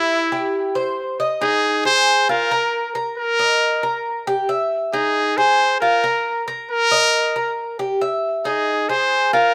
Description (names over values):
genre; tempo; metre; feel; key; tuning
latin; 136 BPM; 4/4; straight; unclear; A4 = 440 Hz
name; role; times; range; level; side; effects
brilliant trumpet; melody; 0.0-9.5 s; E4 to C5; -20 LUFS; equal; slapback echo
Cuban tres; arpeggios; 0.0-9.5 s; Eb4 to E5; -23 LUFS; equal; slapback echo
room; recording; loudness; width
little or no reverb; recorded outdoors, with no room sound; -19 LUFS; mono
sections
0.0-1.4 A section; 1.4-9.5 B section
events
none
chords
0.0 C; 1.4 Ab/Eb; 2.3 Fsus4; 3.2 Eb5; 4.1 Gm6; 4.9 Ab/Eb; 5.8 Fsus4; 6.7 Eb5; 7.6 Gm6; 8.5 Ab/Eb